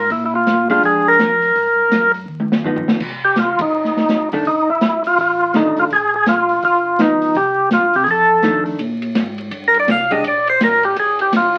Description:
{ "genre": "soul jazz organ trio", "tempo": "166 BPM", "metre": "4/4", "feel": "swing 63% on 8ths", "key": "Bb mixolydian", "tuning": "A4 = 440 Hz", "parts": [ { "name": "percussive tonewheel organ", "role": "melody", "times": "0.0-11.6 s", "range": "Eb4 to F5", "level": "-16 LUFS", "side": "equal", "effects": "slow rotary speaker" }, { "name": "mellow tonewheel organ", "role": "bass", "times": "0.0-11.6 s", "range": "E1 to C3", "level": "-31 LUFS", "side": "equal", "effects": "chorus vibrato, slow rotary speaker" }, { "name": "open jazz drum kit", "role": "drums", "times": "0.1-11.6 s", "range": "crash cymbal, hi-hat, kick drum, ride cymbal, snare drum, toms", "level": "-23 LUFS", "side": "equal", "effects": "none" }, { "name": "vintage hollow-body jazz guitar", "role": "accompaniment", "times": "0.7-10.2 s", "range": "Eb3 to G4", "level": "-23 LUFS", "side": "equal", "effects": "none" } ], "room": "moderate club reverb, RT60 0.6 s", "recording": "very old 78 rpm record, vinyl crackle, nothing above 10.9 kHz", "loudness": "-16 LUFS", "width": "mono", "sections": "0.0-8.8 A section; 8.8-11.6 B section", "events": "drum fill 2.3-3.0; band accent 3.5; tonewheel organ solo 8.8-11.6", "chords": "0.1 Bb6; 1.6 G7alt; 3.0 Cm; 4.5 F6; 5.9 Bb5; 6.6 Gaug7; 7.4 C5; 8.1 F6; 8.8 Bb13", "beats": "| 0.11 0.47 0.83 1.19 | 1.56 1.92 2.28 2.64 | 3.01 3.37 3.73 4.09 | 4.46 4.82 5.18 5.54 | 5.90 6.27 6.63 6.99 | 7.35 7.71 8.07 8.44 | 8.80 9.16 9.52 9.88 | 10.24 10.61 10.97 11.33" }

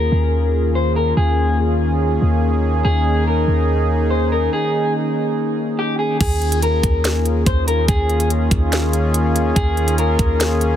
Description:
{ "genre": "hip hop, atmospheric cloud-rap", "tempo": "143 BPM", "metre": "4/4", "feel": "half-time", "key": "unclear", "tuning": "A4 = 438 Hz", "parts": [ { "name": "electric guitar at the edge of break-up", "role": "melody", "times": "0.0-10.8 s", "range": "G4 to C5", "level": "-22 LUFS", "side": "left 2 dB", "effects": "low-pass filter, ping-pong delay" }, { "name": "warm analog pad", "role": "sustained chords", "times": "0.0-10.8 s", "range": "Eb3 to Ab4", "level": "-20 LUFS", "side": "left 1 dB", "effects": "chorus, sidechain pumping" }, { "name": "warm 808-style bass", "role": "bass", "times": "0.0-10.8 s", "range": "Eb2", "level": "-18 LUFS", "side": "equal", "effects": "none" }, { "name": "trap drum kit", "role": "drums", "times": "6.2-10.7 s", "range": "crash cymbal, hi-hat, kick drum, snare drum", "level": "-20 LUFS", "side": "equal", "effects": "none" } ], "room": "little or no reverb", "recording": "heavily compressed radio sound, multiband compression", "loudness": "-15 LUFS", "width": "side -10 dB against mid", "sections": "0.0-6.2 A section; 6.2-10.8 B section", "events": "break 4.5-6.2", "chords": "0.0 Eb9sus4", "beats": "0.33 0.75 | 1.17 1.59 2.01 2.43 | 2.85 3.27 3.69 4.11 | 4.53 4.95 5.37 5.79 | 6.21 6.63 7.04 7.46 | 7.88 8.30 8.72 9.14 | 9.56 9.98 10.40" }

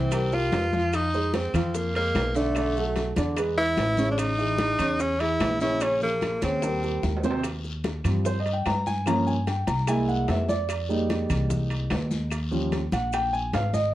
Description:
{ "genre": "Afro-Cuban jazz", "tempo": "148 BPM", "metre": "4/4", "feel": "straight", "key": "Eb major from 7.4 s", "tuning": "A4 = 436 Hz", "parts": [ { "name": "breathy tenor saxophone", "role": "melody", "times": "0.0-7.2 s", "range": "A3 to F4", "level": "-26 LUFS", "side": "equal", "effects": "none" }, { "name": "warm upright piano", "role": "accompaniment", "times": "0.0-13.9 s", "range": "C3 to Bb5", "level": "-27 LUFS", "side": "right 1 dB", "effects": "none" }, { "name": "upright bass", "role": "bass", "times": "0.0-13.9 s", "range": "Ab1 to G2", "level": "-28 LUFS", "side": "equal", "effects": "none" }, { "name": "bongos", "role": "percussion", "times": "0.1-13.9 s", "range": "none", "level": "-38 LUFS", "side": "left 4 dB", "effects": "none" }, { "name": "claves", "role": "percussion", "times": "0.1-13.3 s", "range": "none", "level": "-43 LUFS", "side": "left 6 dB", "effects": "none" }, { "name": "congas", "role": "percussion", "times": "0.1-13.9 s", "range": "none", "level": "-32 LUFS", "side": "left 1 dB", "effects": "none" }, { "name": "guiro", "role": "percussion", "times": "0.1-13.9 s", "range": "none", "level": "-43 LUFS", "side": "left 5 dB", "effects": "none" }, { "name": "maracas", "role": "percussion", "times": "0.1-13.9 s", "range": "none", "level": "-45 LUFS", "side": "right 6 dB", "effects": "none" }, { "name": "timbales", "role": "percussion", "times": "0.1-13.7 s", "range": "none", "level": "-37 LUFS", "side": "right 3 dB", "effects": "none" } ], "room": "moderate studio reverb, RT60 0.5 s", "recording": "worn, warbling old tape, cassette tape, warbly pitch drift", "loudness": "-23 LUFS", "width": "side -14 dB against mid", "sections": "0.0-7.4 A section; 7.4-13.9 B section", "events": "drum fill 6.6-7.4; upright piano solo 7.4-13.9", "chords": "0.1 C5; 0.9 Fm7; 2.6 Bm7; 3.4 E6; 4.2 Amaj7; 5.8 Bbm7; 6.6 Eb6; 9.1 Gm7b5; 9.9 Caug7; 10.7 Fm11; 12.3 Eb9", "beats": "0.12 0.53 | 0.93 1.34 1.74 2.15 | 2.56 2.96 3.37 3.78 | 4.18 4.59 5.00 5.40 | 5.81 6.22 6.62 7.03 | 7.44 7.84 8.25 8.66 | 9.06 9.47 9.88 10.28 | 10.69 11.10 11.50 11.91 | 12.32 12.72 13.13 13.54" }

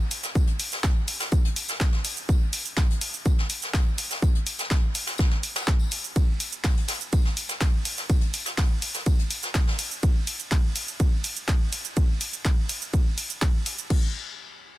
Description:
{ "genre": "techno", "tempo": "124 BPM", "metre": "4/4", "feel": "straight", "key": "none", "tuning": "none", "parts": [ { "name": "jazz brush drum kit", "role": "drums", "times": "0.1-9.9 s", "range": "hi-hat, snare drum, tambourine", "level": "-34 LUFS", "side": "left 2 dB", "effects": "sidechain pumping on hats, high-pass filter on hats, soft clipping on snare, high-pass filter on snare, sidechain pumping on perc, high-pass filter on perc, high-pass filter on room" }, { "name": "punchy analog drum machine", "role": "drums", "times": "0.1-14.0 s", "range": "crash cymbal, handclaps, hi-hat, ride cymbal, shaker", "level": "-30 LUFS", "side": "equal", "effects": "overdrive" }, { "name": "electronic kick drum", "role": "drums", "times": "0.4-14.0 s", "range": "none", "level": "-22 LUFS", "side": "equal", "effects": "none" } ], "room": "small room ambience", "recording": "dense, heavily limited modern master", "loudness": "-22 LUFS", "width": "side -16 dB against mid", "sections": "0.0-13.9 A section", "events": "drop 0.0-13.9", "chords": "none", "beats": "| 0.35 0.84 1.32 1.81 | 2.29 2.77 3.26 3.74 | 4.22 4.71 5.19 5.68 | 6.16 6.64 7.13 7.61 | 8.10 8.58 9.06 9.55 | 10.03 10.52 11.00 11.48 | 11.97 12.45 12.94 13.42 | 13.90" }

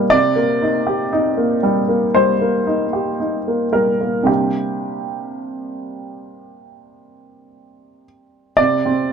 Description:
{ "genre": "neoclassical minimalist piano", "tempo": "56 BPM", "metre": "4/4", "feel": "rubato", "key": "unclear", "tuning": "A4 = 443 Hz", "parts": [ { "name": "clear upright piano", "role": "solo", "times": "0.0-9.1 s", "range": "C3 to D5", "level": "-16 LUFS", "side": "right 1 dB", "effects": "none" } ], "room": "moderate small room ambience, RT60 0.5 s", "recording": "dark, warm production", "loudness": "-15 LUFS", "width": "side -6 dB against mid", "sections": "0.0-8.6 A section", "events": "none", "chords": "0.0 Eb6/C; 4.3 Gm/C; 8.6 N.C.", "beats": "| 0.12 1.14 2.17 3.22 | 4.28 5.36 6.45 7.52 | 8.58" }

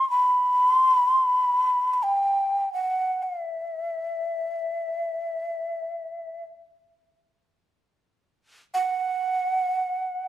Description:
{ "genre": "japanese traditional", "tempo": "free time", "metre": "none", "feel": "none", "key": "E hirajoshi", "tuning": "A4 = 442 Hz", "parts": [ { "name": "breathy hollow shakuhachi", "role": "solo", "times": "0.0-10.3 s", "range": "E5 to B5", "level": "-22 LUFS", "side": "equal", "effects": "none" } ], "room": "light reverb", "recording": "close, detailed microphones", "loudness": "-22 LUFS", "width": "side -13 dB against mid", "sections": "0.0-10.3 A section", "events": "none", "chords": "none", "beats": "free time" }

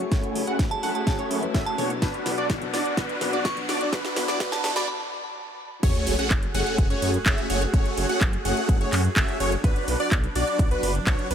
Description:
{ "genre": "EDM, festival progressive house", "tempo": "126 BPM", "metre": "4/4", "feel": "straight", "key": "F# minor", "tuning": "A4 = 440 Hz", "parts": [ { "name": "dark grand piano", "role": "accompaniment", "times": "0.0-4.9 s", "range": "B2 to B4", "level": "-34 LUFS", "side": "left 6 dB", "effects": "sidechain pumping, ping-pong delay" }, { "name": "warm studio string section", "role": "sustained chords", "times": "0.0-11.3 s", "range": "F#3 to G#4", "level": "-36 LUFS", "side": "right 1 dB", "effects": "sidechain pumping" }, { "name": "wide detuned saw bass", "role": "bass", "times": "0.0-11.3 s", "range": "F#1 to F#2", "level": "-29 LUFS", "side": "equal", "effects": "chorus, sidechain pumping, high-pass filter" }, { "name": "house drum kit", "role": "drums", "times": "0.0-11.3 s", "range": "crash cymbal, handclaps, hi-hat, ride cymbal, snare drum", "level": "-30 LUFS", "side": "right 1 dB", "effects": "none" }, { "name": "riser and sub drop", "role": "sound effects", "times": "0.8-7.7 s", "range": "none", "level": "-34 LUFS", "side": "equal", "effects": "none" }, { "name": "plucky unison lead", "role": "arpeggios", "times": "0.1-11.3 s", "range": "B4 to F#5", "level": "-32 LUFS", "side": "equal", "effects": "sidechain pumping, ping-pong delay" }, { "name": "big supersaw lead", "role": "riff", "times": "0.1-11.3 s", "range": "A3 to F#5", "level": "-28 LUFS", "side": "equal", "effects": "phaser, sidechain pumping, low-pass filter, ping-pong delay" }, { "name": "electronic kick drum", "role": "drums", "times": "0.1-11.2 s", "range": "none", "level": "-23 LUFS", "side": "equal", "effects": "none" }, { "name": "glassy synth bell", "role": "melody", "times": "0.7-5.0 s", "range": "A5 to C#6", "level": "-33 LUFS", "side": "right 2 dB", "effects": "chorus, ping-pong delay" } ], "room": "light reverb", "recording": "high-pass filter", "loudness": "-22 LUFS", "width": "side -8 dB against mid", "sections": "0.0-5.8 A section; 5.8-11.3 B section", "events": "build-up 0.0-5.8; drum fill 0.0-4.9; filter sweep on supersaw synth 0.0-5.8; filter sweep 0.0-5.8; riser 0.8-4.9; break 4.9-5.8; drop 5.8-11.3; impact 5.8-7.7", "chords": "0.0 F#madd9; 2.0 Bm; 5.8 F#madd9; 9.6 Bm", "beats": "| 0.12 0.59 1.07 1.54 | 2.02 2.50 2.97 3.45 | 3.93 4.40 4.88 5.36 | 5.83 6.31 6.78 7.26 | 7.74 8.21 8.69 9.16 | 9.64 10.12 10.59 11.07" }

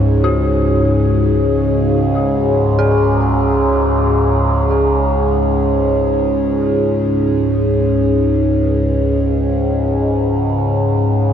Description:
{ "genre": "dark ambient drone", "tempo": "free time", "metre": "none", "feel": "none", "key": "unclear", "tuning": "A4 = 439 Hz", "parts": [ { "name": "dark analog pad", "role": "sustained chords", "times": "0.0-11.3 s", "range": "C#4 to C#5", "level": "-17 LUFS", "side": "equal", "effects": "chorus" }, { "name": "dark detuned synth bell", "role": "arpeggios", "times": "0.0-11.3 s", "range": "C#4 to G#4", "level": "-24 LUFS", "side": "equal", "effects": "chorus, phaser, diffuse ambient delay" }, { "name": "overtone-sweeping drone", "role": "drone", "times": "0.0-11.3 s", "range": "C#2 to G#2", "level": "-15 LUFS", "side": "equal", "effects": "chorus, built-in reverb" } ], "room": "wet huge ambient reverb, RT60 7.7 s", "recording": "none", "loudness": "-13 LUFS", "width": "side -8 dB against mid", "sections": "0.0-11.3 A section", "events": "none", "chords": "0.0 C#5", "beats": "free time" }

